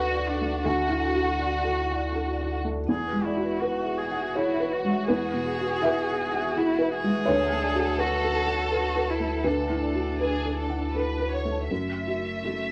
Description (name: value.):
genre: neoclassical piano and strings.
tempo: 81 BPM.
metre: 3/4.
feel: rubato.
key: unclear.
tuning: A4 = 440 Hz.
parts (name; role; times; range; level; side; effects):
rich chamber violin section; melody; 0.0-12.7 s; F#4 to E5; -34 LUFS; equal; none.
rich cello; second line; 0.0-12.7 s; A3 to G#4; -32 LUFS; equal; none.
felt-muted upright piano; accompaniment; 0.0-12.7 s; D2 to F#5; -30 LUFS; equal; none.
punchy sub bass; bass; 0.0-12.7 s; E1 to D2; -37 LUFS; equal; none.
folk marimba with soft mallets; arpeggios; 0.1-11.6 s; D4 to A5; -38 LUFS; equal; none.
room: moderate studio reverb, RT60 0.7 s.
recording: none.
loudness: -26 LUFS.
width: mono.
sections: 0.0-11.7 A section; 11.7-12.7 B section.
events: none.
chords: 0.0 D; 2.9 Eadd9; 7.3 Bm7/D; 11.7 F#m7.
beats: | 0.65 1.40 2.14 | 2.88 3.62 4.35 | 5.08 5.84 6.57 | 7.28 7.99 8.72 | 9.45 10.21 10.96 | 11.70 12.44.